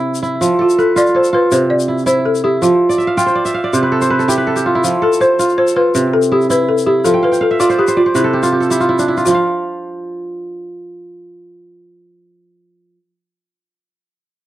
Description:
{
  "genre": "west african traditional, West African string and xylophone music",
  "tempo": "109 BPM (dotted quarters)",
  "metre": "12/8",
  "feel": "straight",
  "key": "F lydian",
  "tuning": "A4 = 443 Hz",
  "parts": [
    { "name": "balafon", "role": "melody", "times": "0.0-12.9 s", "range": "E4 to D5", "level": "-14 LUFS", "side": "left 1 dB", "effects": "none" },
    { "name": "kora", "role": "arpeggios", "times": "0.0-13.0 s", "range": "C3 to G5", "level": "-14 LUFS", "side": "right 1 dB", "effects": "slapback echo" },
    { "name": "egg shaker", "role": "percussion", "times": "0.1-9.4 s", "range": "none", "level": "-26 LUFS", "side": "left 8 dB", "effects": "none" }
  ],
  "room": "light reverb",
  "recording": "dry, close 1970s-style studio recording",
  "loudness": "-11 LUFS",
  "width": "side -14 dB against mid",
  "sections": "0.0-9.3 A section; 9.3-11.5 B section",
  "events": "kora fill 2.9-4.8, 7.1-9.3",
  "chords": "0.4 F; 1.5 C; 2.6 Dm11/F; 3.7 C; 4.8 F; 5.9 C; 7.0 Fmaj9#11; 8.2 C; 9.3 N.C."
}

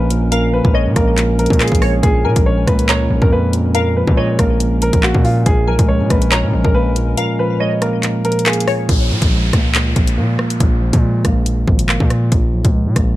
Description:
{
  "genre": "hip hop, drill",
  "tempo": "140 BPM",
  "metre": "4/4",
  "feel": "half-time",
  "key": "Bb phrygian",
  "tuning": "A4 = 439 Hz",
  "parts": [
    { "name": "warm upright piano", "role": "melody", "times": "0.0-8.9 s", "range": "F4 to Db5", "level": "-20 LUFS", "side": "equal", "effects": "ping-pong delay" },
    { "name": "mellow tine electric piano", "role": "accompaniment", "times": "0.0-13.2 s", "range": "Bb2 to Bb3", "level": "-18 LUFS", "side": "right 1 dB", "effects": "low-pass filter" },
    { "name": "dark analog pad", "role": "sustained chords", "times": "0.0-8.9 s", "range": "Ab3 to Bb4", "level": "-26 LUFS", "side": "left 1 dB", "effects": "chorus" },
    { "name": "distorted 808-style bass", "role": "bass", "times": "0.0-13.2 s", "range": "Ab1 to Bb2", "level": "-17 LUFS", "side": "equal", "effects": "distortion" },
    { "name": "drill drum kit", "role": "drums", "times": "0.1-13.1 s", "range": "handclaps, hi-hat, kick drum, rim click", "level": "-16 LUFS", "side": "equal", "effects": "none" },
    { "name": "glassy wavetable pluck", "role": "second line", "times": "0.3-8.9 s", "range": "Db5 to Bb5", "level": "-24 LUFS", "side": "left 2 dB", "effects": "chorus, ping-pong delay" },
    { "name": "downlifter", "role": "sound effects", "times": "8.9-12.3 s", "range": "none", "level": "-26 LUFS", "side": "right 1 dB", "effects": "none" }
  ],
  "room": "little or no reverb",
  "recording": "dark, warm production",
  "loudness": "-12 LUFS",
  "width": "side -16 dB against mid",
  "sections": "0.0-8.9 A section; 8.9-13.2 B section",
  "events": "break 7.2-8.9; filter sweep on tine electric piano 8.9-13.2",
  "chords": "0.0 Bbm7"
}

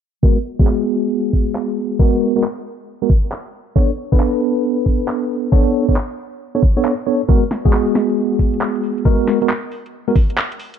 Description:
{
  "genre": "UK garage, two-step garage",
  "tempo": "136 BPM",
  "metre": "4/4",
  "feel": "swing 65% on 16ths",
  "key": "G# minor",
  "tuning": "A4 = 440 Hz",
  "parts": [
    { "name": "mellow tine electric piano", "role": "stabs", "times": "0.2-10.2 s", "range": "G#3 to C#5", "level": "-18 LUFS", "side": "right 1 dB", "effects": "medium stereo tremolo, low-pass filter, tape echo" },
    { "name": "electronic kick drum", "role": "drums", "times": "0.2-10.3 s", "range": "none", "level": "-14 LUFS", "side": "equal", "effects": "small room reverb" },
    { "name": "garage drum kit", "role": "drums", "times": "0.7-10.8 s", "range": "handclaps, hi-hat, snare drum", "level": "-24 LUFS", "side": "equal", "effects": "small room reverb" }
  ],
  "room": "little or no reverb",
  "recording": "low-pass filter",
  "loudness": "-15 LUFS",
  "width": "side -8 dB against mid",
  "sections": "0.2-10.8 A section",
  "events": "filter sweep on tine electric piano 0.2-10.8; filter sweep 0.2-10.8",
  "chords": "0.2 G#m9; 3.5 Bm9; 7.3 G#m9"
}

